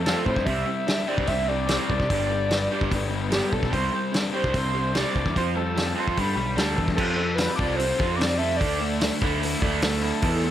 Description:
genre	indie rock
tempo	147 BPM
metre	4/4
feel	straight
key	C major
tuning	A4 = 440 Hz
part	overdriven synth lead	melody	0.0-10.5 s	G4 to E5	-28 LUFS	equal	distortion, slapback echo, plate reverb
part	crunchy overdriven guitar	riff	0.0-10.5 s	E2 to A4	-29 LUFS	left 8 dB	spring reverb
part	raw garage guitar	riff	0.0-10.5 s	E2 to F4	-30 LUFS	right 7 dB	overdrive, wide subtle chorus, slapback echo
part	fuzz picked electric bass	bass	0.0-10.5 s	G1 to C3	-28 LUFS	equal	overdrive
part	loose indie drum kit	drums	0.1-10.3 s	crash cymbal, hi-hat, kick drum, snare drum	-27 LUFS	equal	none
part	hollow soft pad	sustained chords	10.2-10.5 s	B3 to A4	-34 LUFS	right 1 dB	none
room	light reverb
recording	none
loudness	-22 LUFS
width	side -11 dB against mid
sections	0.0-7.0 A section; 7.0-10.5 B section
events	none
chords	0.5 Csus2; 2.1 G; 3.7 Csus2; 5.4 Fadd9; 6.2 Gadd9; 7.0 F; 8.6 Dsus2

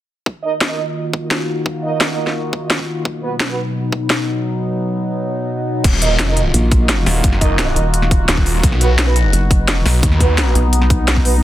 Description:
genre	dark technical drum and bass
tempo	172 BPM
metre	4/4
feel	straight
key	Eb minor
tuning	A4 = 439 Hz
part	sweeping resonant pad	sustained chords	0.6-11.4 s	B2 to Gb4	-22 LUFS	left 1 dB	chorus, phaser, sidechain pumping
part	electronic kick drum	drums	0.3-11.2 s	none	-15 LUFS	equal	high-pass filter on kick, studio ambience
part	dark brass ensemble	stabs	0.4-3.6, 6.0-11.3 s	B3 to Eb5	-23 LUFS	right 5 dB	low-pass filter, tape echo
part	drum and bass drum kit	drums	0.6-11.3 s	crash cymbal, hi-hat, snare drum	-19 LUFS	equal	studio ambience
part	snarling distorted saw bass	bass	5.8-10.5 s	Eb1 to D#2	-16 LUFS	equal	distortion, sidechain pumping
part	vowel-sweep wobble bass	bass	6.5-11.4 s	Eb1 to B1	-15 LUFS	equal	chorus
room	little or no reverb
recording	dense, heavily limited modern master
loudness	-14 LUFS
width	side -14 dB against mid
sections	0.3-5.8 A section; 5.8-11.4 B section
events	filter sweep on brass ensemble 0.3-5.8; drop 5.8-11.4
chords	0.3 Ebmadd9; 3.1 B; 5.8 Ebmadd9; 8.6 B

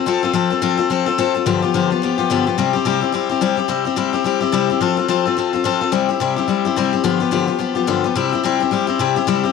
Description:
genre	rock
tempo	215 BPM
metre	4/4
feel	swing 59% on 8ths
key	C major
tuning	A4 = 444 Hz
part	picked steel-string acoustic guitar	solo	0.0-9.5 s	G2 to A4	-16 LUFS	left 8 dB	none
room	moderate plate reverb, RT60 2.8 s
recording	none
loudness	-16 LUFS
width	side -5 dB against mid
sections	0.0-3.7 A section; 3.7-9.5 B section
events	none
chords	0.0 F; 1.5 G7; 2.6 C; 4.8 F; 5.9 C; 7.1 G7; 8.2 C

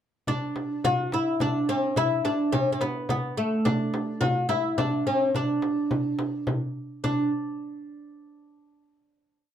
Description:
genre	Arabic maqam ensemble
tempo	106 BPM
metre	3/4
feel	straight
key	D maqam rast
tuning	A4 = 439 Hz
part	oud	melody	0.3-7.3 s	A3 to F#4-50c	-25 LUFS	equal	none
part	frame drum	percussion	0.3-7.3 s	none	-30 LUFS	left 1 dB	none
room	moderate small room reverb, RT60 0.6 s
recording	band playing live in one room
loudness	-24 LUFS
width	side -9 dB against mid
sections	0.3-7.0 A section; 7.0-8.7 final note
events	none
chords	none

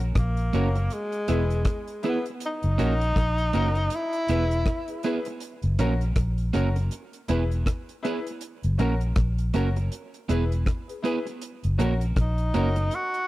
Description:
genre	roots reggae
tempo	80 BPM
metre	4/4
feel	swing 59% on 16ths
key	F# mixolydian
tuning	A4 = 440 Hz
part	vintage muted fingered electric bass	bass	0.0-12.9 s	E1 to A#1	-24 LUFS	equal	tube saturation
part	deep reggae drum kit	drums	0.0-13.3 s	hi-hat, kick drum, rim click	-28 LUFS	equal	none
part	breathy tenor saxophone	melody	0.2-5.1, 12.2-13.3 s	G#3 to F#4	-28 LUFS	equal	tape echo
part	electric guitar at the edge of break-up	accompaniment	0.5-12.8 s	A#3 to B4	-30 LUFS	right 6 dB	spring reverb, tape echo
part	clear upright piano	stabs	0.5-12.7 s	C#4 to B4	-32 LUFS	left 5 dB	none
room	small room reverb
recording	dry, close 1970s-style studio recording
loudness	-23 LUFS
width	side -17 dB against mid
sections	0.0-13.3 A section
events	none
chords	0.0 F#; 0.9 E; 2.4 F#; 3.9 E; 5.4 F#; 6.9 E; 8.4 F#; 9.9 E; 11.4 F#

